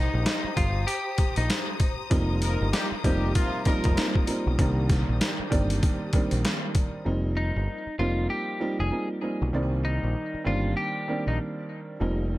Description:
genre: hip hop, boom-bap hip-hop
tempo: 97 BPM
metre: 4/4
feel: swing 62% on 16ths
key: C minor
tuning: A4 = 440 Hz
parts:
  - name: clean electric guitar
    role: melody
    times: 0.0-1.5, 7.4-11.4 s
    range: Eb4 to Ab4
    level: -31 LUFS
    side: left 1 dB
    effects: digital delay
  - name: rich studio string section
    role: sustained chords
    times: 0.0-7.0 s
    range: F4 to Eb6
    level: -36 LUFS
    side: left 3 dB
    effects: none
  - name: overdriven picked electric bass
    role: bass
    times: 0.0-12.4 s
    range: F1 to C2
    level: -27 LUFS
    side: equal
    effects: none
  - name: boom bap sampler-style drum kit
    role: drums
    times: 0.3-6.9 s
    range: hi-hat, kick drum, snare drum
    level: -25 LUFS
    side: equal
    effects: none
  - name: clear upright piano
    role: accompaniment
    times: 2.1-12.4 s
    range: Eb3 to D5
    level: -29 LUFS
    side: right 2 dB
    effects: none
  - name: clear horn section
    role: stabs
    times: 2.4-4.1 s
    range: C3 to Bb4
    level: -32 LUFS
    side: left 2 dB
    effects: digital delay
room: little or no reverb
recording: none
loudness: -24 LUFS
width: side -17 dB against mid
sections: 0.0-7.1 A section; 7.1-12.4 B section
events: break 0.0-2.1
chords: 0.0 Cm7; 2.1 F7sus4; 4.6 Cm7; 7.1 F7sus4; 9.5 Cm7

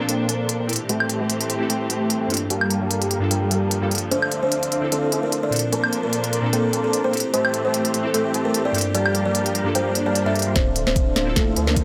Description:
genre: future bass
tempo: 149 BPM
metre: 4/4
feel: swing 55% on 16ths, half-time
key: D minor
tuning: A4 = 440 Hz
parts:
  - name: glassy digital keys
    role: accompaniment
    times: 0.0-11.8 s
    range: G2 to A4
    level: -29 LUFS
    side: equal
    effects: chorus, sidechain pumping
  - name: bright studio string section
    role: sustained chords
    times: 0.0-11.8 s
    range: D2 to A4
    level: -34 LUFS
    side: equal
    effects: vintage 12-bit sampler grit, sidechain pumping, low-pass filter
  - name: dense compressed supersaw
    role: riff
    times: 0.1-11.8 s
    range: G3 to C6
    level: -27 LUFS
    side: equal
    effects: sidechain pumping, low-pass filter
  - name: trap drum kit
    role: drums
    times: 0.1-11.8 s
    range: hi-hat, snare drum, woodblock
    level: -26 LUFS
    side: equal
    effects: overdrive
  - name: buzzing kalimba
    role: melody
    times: 4.1-11.8 s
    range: A3 to E5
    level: -26 LUFS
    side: equal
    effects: sidechain pumping, delay
  - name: swell and riser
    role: sound effects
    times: 9.9-11.8 s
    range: none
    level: -36 LUFS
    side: equal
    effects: none
  - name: saturated sub bass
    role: bass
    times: 10.6-11.8 s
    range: D1 to D2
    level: -28 LUFS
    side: equal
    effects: tube saturation, sidechain pumping
  - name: electronic kick drum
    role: drums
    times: 10.6-11.8 s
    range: none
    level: -23 LUFS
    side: equal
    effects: overdrive
room: light reverb, digital ambience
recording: none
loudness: -21 LUFS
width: mono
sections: 0.0-10.6 A section; 10.6-11.8 B section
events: swell 9.9-10.6; build-up 10.6-11.8; drum fill 10.6-11.8; filter sweep on supersaw synth 10.6-11.8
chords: 0.0 Bbmaj7; 0.7 Am7; 2.5 Gm7; 4.1 Dm7; 5.5 Bbmaj7; 7.1 Am7; 8.9 Gm7; 10.6 Dm7

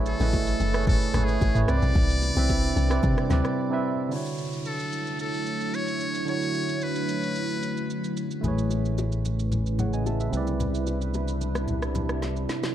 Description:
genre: amapiano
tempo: 111 BPM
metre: 4/4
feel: straight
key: D lydian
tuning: A4 = 439 Hz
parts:
  - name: barky tine electric piano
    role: accompaniment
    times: 0.0-12.7 s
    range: C3 to A5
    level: -30 LUFS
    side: right 4 dB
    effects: none
  - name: deep dark ambient pad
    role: sustained chords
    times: 0.0-12.7 s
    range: C3 to C#5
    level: -31 LUFS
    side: equal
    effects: chorus, built-in reverb
  - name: deep log drum bass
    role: bass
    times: 0.0-3.4 s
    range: F#1 to C3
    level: -25 LUFS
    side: equal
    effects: none
  - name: trumpet with metal mute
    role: melody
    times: 0.1-8.2 s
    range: G#4 to D5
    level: -32 LUFS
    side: left 2 dB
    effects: tape echo
  - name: afro-pop drum kit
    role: drums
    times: 0.1-12.7 s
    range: kick drum, rim click, shaker, snare drum, toms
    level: -28 LUFS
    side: equal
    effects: none
  - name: bongos and congas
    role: percussion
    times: 0.2-3.4, 8.4-12.7 s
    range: none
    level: -34 LUFS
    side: left 3 dB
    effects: none
  - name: downlifter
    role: sound effects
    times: 4.1-8.4 s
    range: none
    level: -44 LUFS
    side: left 2 dB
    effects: none
  - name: fingered electric bass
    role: bass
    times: 8.4-12.5 s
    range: A1 to C2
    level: -27 LUFS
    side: left 1 dB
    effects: none
room: light reverb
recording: dark, warm production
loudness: -23 LUFS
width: side -11 dB against mid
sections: 0.0-4.1 A section; 4.1-12.7 B section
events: drop 0.0-4.1; break 3.6-4.1; drum fill 12.2-12.7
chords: 0.0 Amaj9; 1.7 Cmaj9; 4.1 Dmaj9; 8.4 Amaj9; 10.3 Cmaj9

